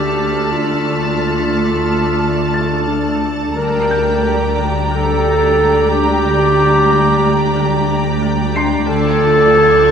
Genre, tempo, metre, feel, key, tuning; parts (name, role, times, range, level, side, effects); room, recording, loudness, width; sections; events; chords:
cinematic; 90 BPM; 4/4; straight; D minor; A4 = 440 Hz
muted symphonic violin section; melody; 0.0-9.9 s; A5 to Bb5; -23 LUFS; equal
warm clarinet; second line; 0.0-9.9 s; D4 to Bb4; -15 LUFS; right 1 dB
muted symphonic viola section; accompaniment; 0.0-9.9 s; F3 to D4; -24 LUFS; equal
soft additive organ-like pad; sustained chords; 0.0-9.9 s; F4 to A5; -23 LUFS; right 2 dB; ensemble chorus, built-in reverb
marimba with medium mallets; riff; 0.0-9.9 s; D3 to D4; -21 LUFS; left 6 dB
muted symphonic cello section; bass; 0.0-9.9 s; D2; -23 LUFS; right 3 dB
muted symphonic double bass section; bass; 0.0-9.9 s; D2; -25 LUFS; right 3 dB
deep rumbling drone; drone; 0.0-9.9 s; D2; -28 LUFS; left 1 dB; built-in reverb
felt-muted upright piano; texture; 0.0-9.9 s; C6 to C7; -27 LUFS; equal
muted symphonic violin section; texture; 0.0-3.2, 8.9-9.9 s; D6 to B6; -27 LUFS; left 2 dB
moderate scoring stage reverb, RT60 1.9 s; -12 LUFS; side -7 dB against mid
0.0-9.9 A section
0.0 Dm; 3.6 Gm/D; 8.9 Dm